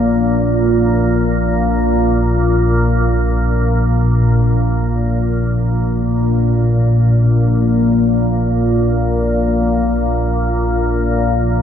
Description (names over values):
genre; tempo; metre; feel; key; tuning
ambient; free time; none; none; unclear; A4 = 439 Hz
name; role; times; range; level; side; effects
organ-like drone; solo; 0.0-11.6 s; Bb1 to Bb2; -13 LUFS; equal; ensemble chorus, built-in reverb, phaser, ping-pong delay
room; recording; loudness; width
wet cathedral reverb, RT60 5.7 s; in a vast, echoing space; -13 LUFS; side -8 dB against mid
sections
0.0-4.6 A section; 4.6-11.6 B section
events
none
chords
none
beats
free time